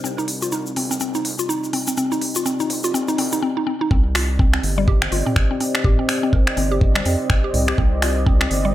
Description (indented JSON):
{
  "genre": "afro house",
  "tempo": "124 BPM",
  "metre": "4/4",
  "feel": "swing 59% on 16ths",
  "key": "C minor",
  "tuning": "A4 = 441 Hz",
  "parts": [
    { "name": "dark analog pad", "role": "sustained chords", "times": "0.0-8.7 s", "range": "C4 to Eb5", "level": "-26 LUFS", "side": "left 1 dB", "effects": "chorus, sidechain pumping" },
    { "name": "mallet-like synth pluck", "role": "arpeggios", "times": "0.0-8.7 s", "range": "G3 to Bb4", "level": "-23 LUFS", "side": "equal", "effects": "chorus, sidechain pumping, dub echo" },
    { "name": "round analog bass", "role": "bass", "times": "0.0-8.7 s", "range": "G1 to F2", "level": "-24 LUFS", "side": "equal", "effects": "sidechain pumping, high-pass filter" },
    { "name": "afro-pop drum kit", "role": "drums", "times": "0.0-8.6 s", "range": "finger snaps, hi-hat, toms", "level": "-24 LUFS", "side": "equal", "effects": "high-pass filter on toms, studio reverb, high-pass filter on hats, high-pass filter on snare" },
    { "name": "egg shaker", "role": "percussion", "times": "0.0-3.4 s", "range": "none", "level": "-28 LUFS", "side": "left 3 dB", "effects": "none" },
    { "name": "electronic kick drum", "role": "drums", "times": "3.9-8.4 s", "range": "none", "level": "-16 LUFS", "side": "equal", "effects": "studio reverb" }
  ],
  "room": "light reverb, digital ambience",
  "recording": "none",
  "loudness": "-17 LUFS",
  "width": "side -14 dB against mid",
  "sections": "0.0-3.9 A section; 3.9-8.7 B section",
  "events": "build-up 0.0-3.9; drum fill 0.0-3.4; filter sweep on analog synth pad 0.0-3.9; drop 3.9-8.7",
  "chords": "0.0 Cm"
}